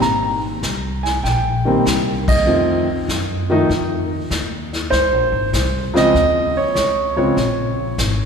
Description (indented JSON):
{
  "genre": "jazz piano trio",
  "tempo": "98 BPM",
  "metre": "4/4",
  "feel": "swing 68% on 8ths",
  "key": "Bb minor",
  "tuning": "A4 = 440 Hz",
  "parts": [
    { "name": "warm concert grand piano", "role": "melody", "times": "0.0-8.3 s", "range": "Db3 to Bb5", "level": "-17 LUFS", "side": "right 1 dB", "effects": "none" },
    { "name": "upright bass", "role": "bass", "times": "0.0-8.3 s", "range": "Ab1 to Gb2", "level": "-23 LUFS", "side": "left 1 dB", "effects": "none" },
    { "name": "vintage brush drum kit", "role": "drums", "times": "0.0-8.3 s", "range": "brushed snare drum, hi-hat, kick drum, ride cymbal, snare drum", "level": "-24 LUFS", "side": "left 2 dB", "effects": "none" }
  ],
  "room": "wet church reverb, RT60 3.0 s",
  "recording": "recorded in a church or concert hall",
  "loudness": "-16 LUFS",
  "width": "side -6 dB against mid",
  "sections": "0.0-8.3 A section",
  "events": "band accent 2.2-2.5",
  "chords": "0.0 Abmaj9; 2.5 F7; 4.9 Bbm9",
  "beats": "| 0.01 0.62 1.24 1.85 | 2.46 3.08 3.69 4.31 | 4.92 5.53 6.14 6.76 | 7.37 7.98"
}